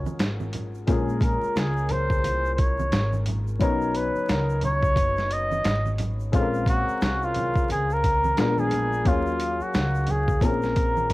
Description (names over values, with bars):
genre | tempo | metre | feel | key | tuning
hip hop, jazz-hop | 88 BPM | 4/4 | swing 60% on 16ths | Bb minor | A4 = 440 Hz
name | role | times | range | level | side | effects
breathy flugelhorn | melody | 0.0-11.1 s | F4 to D#5 | -26 LUFS | equal | cassette tape
dark upright piano | accompaniment | 0.0-11.1 s | F#3 to F5 | -29 LUFS | left 4 dB | cassette tape
upright bass | bass | 0.0-11.1 s | F1 to Eb2 | -28 LUFS | equal | none
congas and egg shaker | percussion | 0.1-11.1 s | none | -36 LUFS | right 4 dB | none
boom bap sampler-style drum kit | drums | 0.2-11.1 s | hi-hat, kick drum, snare drum | -25 LUFS | equal | cassette tape
room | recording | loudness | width
light reverb, small room ambience | home recording on cassette, vinyl crackle | -21 LUFS | side -19 dB against mid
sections
0.0-11.1 A section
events
none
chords
0.0 Ebm11 (rootless); 0.9 Bbm9; 3.6 Badd9; 6.3 Bbm9; 8.4 Bb7b9; 9.1 Ebm11; 10.4 Bbm9